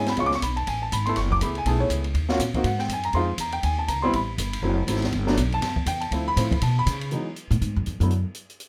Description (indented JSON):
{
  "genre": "jazz, small-group swing and bop",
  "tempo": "242 BPM",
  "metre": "4/4",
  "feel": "swing 59% on 8ths",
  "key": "unclear",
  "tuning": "A4 = 439 Hz",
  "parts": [
    { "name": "clear concert grand piano", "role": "accompaniment", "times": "0.0-8.1 s", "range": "D3 to D6", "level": "-28 LUFS", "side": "equal", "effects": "none" },
    { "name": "upright bass", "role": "bass", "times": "0.0-8.2 s", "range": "F#1 to C#3", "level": "-28 LUFS", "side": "equal", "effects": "none" },
    { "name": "open jazz drum kit", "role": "drums", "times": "0.1-8.7 s", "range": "hi-hat, kick drum, ride cymbal, snare drum", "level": "-33 LUFS", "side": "equal", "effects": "none" }
  ],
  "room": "light reverb",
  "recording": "none",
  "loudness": "-25 LUFS",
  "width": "mono",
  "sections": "0.0-7.1 A section; 7.1-8.7 A section",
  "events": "upright bass solo 7.1-8.7",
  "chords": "0.2 C#7; 1.2 F#m11; 2.2 D#m7; 2.7 F#add9; 3.1 C#maj7; 4.1 Gadd9; 4.6 F#m11; 5.1 Gmaj7; 6.1 Dm7; 6.6 Bsus2; 7.1 Emaj9; 8.1 N.C."
}